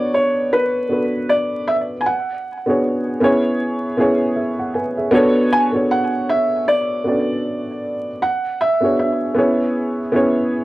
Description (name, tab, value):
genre	hip hop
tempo	78 BPM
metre	4/4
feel	swing 59% on 16ths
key	B dorian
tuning	A4 = 440 Hz
part	felt-muted upright piano	melody	0.0-10.6 s	B4 to G#5	-19 LUFS	right 1 dB	low-pass filter, analog delay
part	dark upright piano	accompaniment	0.0-10.6 s	B3 to G#5	-17 LUFS	equal	cassette tape, low-pass filter
room	wet studio reverb, RT60 0.6 s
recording	worn, warbling old tape, cassette tape, vinyl crackle, warbly pitch drift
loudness	-16 LUFS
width	side -17 dB against mid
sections	0.0-10.6 A section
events	none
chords	0.0 Bm9; 2.1 Bm69; 3.2 C#m7; 5.1 Bm9; 8.2 E13; 9.4 C#m7